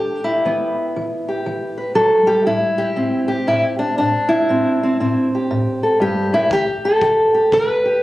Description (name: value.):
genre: acoustic country blues, solo or duo.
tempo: 118 BPM.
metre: 4/4.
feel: swing 63% on 8ths.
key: E minor.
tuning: A4 = 440 Hz.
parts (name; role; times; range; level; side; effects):
fingerpicked steel-string acoustic guitar; melody; 0.0-8.0 s; F#2 to B4; -15 LUFS; equal; none.
kick drum; drums; 6.5-7.7 s; none; -32 LUFS; equal; none.
room: light reverb.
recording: recorded on a phone in the room, club reverb.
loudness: -15 LUFS.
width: side -16 dB against mid.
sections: 0.0-8.0 A section.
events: none.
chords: 0.0 Em; 2.5 Am7; 6.5 Em.